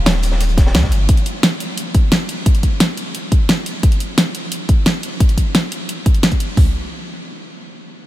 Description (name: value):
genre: liquid drum and bass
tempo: 175 BPM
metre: 4/4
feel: straight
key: unclear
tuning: A4 = 440 Hz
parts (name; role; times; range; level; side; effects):
- warm sub bass; bass; 0.0-1.1 s; Eb1 to Db2; -16 LUFS; equal; none
- crunchy breakbeat drum kit; drums; 0.1-1.0 s; hi-hat, snare drum; -28 LUFS; equal; high-pass filter on hats, high-pass filter on snare, high-pass filter on room
- pop drum kit; drums; 0.1-6.5 s; hi-hat, snare drum; -18 LUFS; equal; none
- pop drum kit; drums; 0.6-6.7 s; hi-hat, kick drum, toms; -13 LUFS; equal; none
room: light reverb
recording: none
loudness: -14 LUFS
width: side -15 dB against mid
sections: 0.0-6.6 A section; 6.6-8.1 B section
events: none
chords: none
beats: 0.06 0.40 0.74 | 1.09 1.43 1.77 2.12 | 2.46 2.80 3.14 3.49 | 3.83 4.17 4.52 4.86 | 5.20 5.54 5.89 6.23 | 6.57